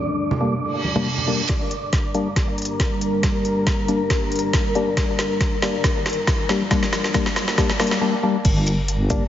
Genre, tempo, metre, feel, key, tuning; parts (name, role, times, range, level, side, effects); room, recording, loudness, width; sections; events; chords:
deep dubstep; 138 BPM; 4/4; swing 54% on 16ths, half-time; G minor; A4 = 440 Hz
dark analog pad; sustained chords; 0.0-8.0 s; G3 to Bb4; -26 LUFS; equal; chorus
wind-like tuned noise texture; texture; 0.0-9.3 s; Bb4 to D5; -29 LUFS; left 3 dB; built-in reverb
congas; percussion; 0.3-1.3 s; -26 LUFS; right 2 dB
percussive organ stab; stabs; 0.4-9.2 s; G3 to D4; -24 LUFS; left 3 dB; chorus, phaser, dub echo
reverse cymbal and riser; sound effects; 0.8-8.0 s; -31 LUFS; right 2 dB
deep house drum kit; drums; 1.5-9.2 s; crash cymbal, hi-hat, shaker, snare drum; -25 LUFS; equal; high-pass filter on snare, high-pass filter on hats, high-pass filter on cymbals, high-pass filter on perc
electronic kick drum; drums; 1.5-9.2 s; -22 LUFS; equal
deep soft wobble bass; bass; 8.4-9.3 s; G1; -20 LUFS; equal; chorus
moderate echo chamber reverb, RT60 1.4 s, digital ambience; heavily compressed radio sound, multiband compression, nothing above 7.5 kHz; -18 LUFS; side -11 dB against mid
0.0-1.5 A section; 1.5-8.4 B section
filter sweep on synth stab 0.0-1.5, 1.5-8.4; reverse cymbal 0.8-1.5; build-up 1.5-8.4; drum fill 1.5-8.0
0.0 Gm